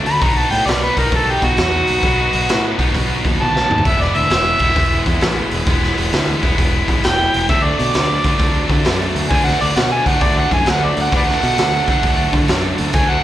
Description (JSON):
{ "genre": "blues rock power trio and southern rock", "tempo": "132 BPM", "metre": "4/4", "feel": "swing 66% on 8ths", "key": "E mixolydian", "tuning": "A4 = 440 Hz", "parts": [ { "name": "overdriven tonewheel organ", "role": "sustained chords", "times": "0.0-13.2 s", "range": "B3 to D#5", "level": "-30 LUFS", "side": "right 3 dB", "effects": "none" }, { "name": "distorted electric guitar", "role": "riff", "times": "0.0-13.2 s", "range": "B2 to E4", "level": "-20 LUFS", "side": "left 1 dB", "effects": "overdrive" }, { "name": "overdriven harmonica", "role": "melody", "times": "0.1-13.2 s", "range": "F#4 to B5", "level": "-18 LUFS", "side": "right 1 dB", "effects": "slapback echo" }, { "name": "growling fingered electric bass", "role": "bass", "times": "0.1-13.2 s", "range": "E1 to D3", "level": "-21 LUFS", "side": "equal", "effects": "overdrive" }, { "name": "raw garage drum kit", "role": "drums", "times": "0.1-13.1 s", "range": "hi-hat, kick drum, snare drum, toms", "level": "-18 LUFS", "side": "equal", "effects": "none" } ], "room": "studio ambience", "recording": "live gig heard through the venue's PA, club reverb", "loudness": "-13 LUFS", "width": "side -13 dB against mid", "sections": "0.0-13.2 A section", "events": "harmonica solo 0.0-13.2; drum fill 3.4-3.9", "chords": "0.2 B; 3.9 E; 7.5 D", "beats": "| 0.22 0.68 1.13 1.59 | 2.04 2.50 2.95 3.41 | 3.86 4.32 4.77 5.22 | 5.68 6.13 6.59 7.04 | 7.50 7.95 8.40 8.86 | 9.31 9.77 10.22 10.68 | 11.13 11.59 12.04 12.49 | 12.95" }